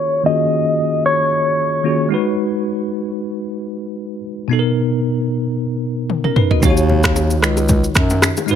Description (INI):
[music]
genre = afrobeats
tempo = 113 BPM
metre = 4/4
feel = swing 55% on 16ths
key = Eb minor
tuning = A4 = 440 Hz
[part]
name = direct-recorded clean electric guitar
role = melody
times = 0.0-2.1 s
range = Db5 to Eb5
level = -17 LUFS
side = left 1 dB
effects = low-pass filter, ping-pong delay
[part]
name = bell-like tine electric piano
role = accompaniment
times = 0.0-8.6 s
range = B2 to D#5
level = -19 LUFS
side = equal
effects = fast stereo tremolo, low-pass filter
[part]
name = deep house drum kit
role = drums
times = 6.1-8.6 s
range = finger snaps, kick drum, rim click, shaker, toms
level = -16 LUFS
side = equal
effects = none
[part]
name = warm bass clarinet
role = bass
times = 6.6-8.6 s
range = Db2 to Ab2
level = -16 LUFS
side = equal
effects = none
[part]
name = congas and bongos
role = percussion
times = 6.6-8.5 s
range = none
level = -23 LUFS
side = left 4 dB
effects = none
[sound]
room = digital ambience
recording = none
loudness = -15 LUFS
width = side -8 dB against mid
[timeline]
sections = 0.0-6.6 A section; 6.6-8.6 B section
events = filter sweep 0.0-6.6; drum fill 6.1-6.6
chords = 0.0 Ebm11; 2.1 Abm7; 4.5 Bmaj7; 6.6 Ebm7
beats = | 0.26 0.79 1.32 1.85 | 2.38 2.91 3.44 3.97 | 4.50 5.03 5.57 6.10 | 6.63 7.16 7.69 8.22